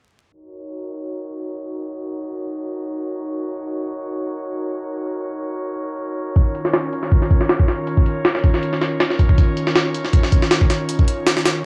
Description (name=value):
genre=drum and bass, jungle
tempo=159 BPM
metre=4/4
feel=swing 54% on 16ths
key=Eb minor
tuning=A4 = 439 Hz
part: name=airy breathy pad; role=sustained chords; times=0.3-11.7 s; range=Eb3 to Db5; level=-27 LUFS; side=equal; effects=chorus
part: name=jungle sampler-style drum kit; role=drums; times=6.4-11.6 s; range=hi-hat, kick drum, snare drum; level=-18 LUFS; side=equal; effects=none
room=light reverb, digital ambience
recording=vinyl crackle, low-pass filter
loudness=-20 LUFS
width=mono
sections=0.3-11.7 A section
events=filter sweep 0.3-11.7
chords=0.3 Ebm7; 6.4 Bbm/Eb